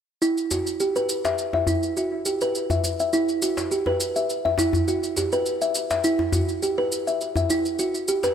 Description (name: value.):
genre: organic downtempo.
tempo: 103 BPM.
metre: 4/4.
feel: swing 53% on 16ths.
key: E minor.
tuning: A4 = 440 Hz.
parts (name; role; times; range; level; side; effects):
kalimba; arpeggios; 0.2-8.3 s; E4 to E5; -22 LUFS; equal; low-pass filter, tape echo.
shaker; drums; 0.2-8.3 s; none; -30 LUFS; right 1 dB; none.
djembe; percussion; 0.5-8.3 s; none; -27 LUFS; left 2 dB; none.
room: light reverb, small room ambience.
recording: none.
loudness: -21 LUFS.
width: side -8 dB against mid.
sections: 0.2-8.3 A section.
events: filter sweep on kalimba 0.2-8.3.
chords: none.